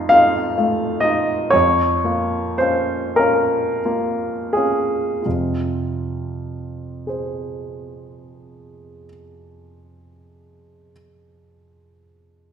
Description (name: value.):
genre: classical, romantic nocturne for solo piano.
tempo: 26-44 BPM (dotted quarters).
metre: 12/8.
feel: rubato.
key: F minor.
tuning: A4 = 440 Hz.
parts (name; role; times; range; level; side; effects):
warm baby grand piano; solo; 0.0-12.5 s; F2 to F5; -17 LUFS; equal; none.
room: wet recital hall reverb, RT60 1.5 s.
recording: recorded in a church or concert hall.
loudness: -17 LUFS.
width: side -8 dB against mid.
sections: 0.0-5.2 A section; 5.2-12.5 B section.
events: slowing down 0.0-5.2.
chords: 0.0 F7; 1.5 Bbm/F; 5.2 Fm.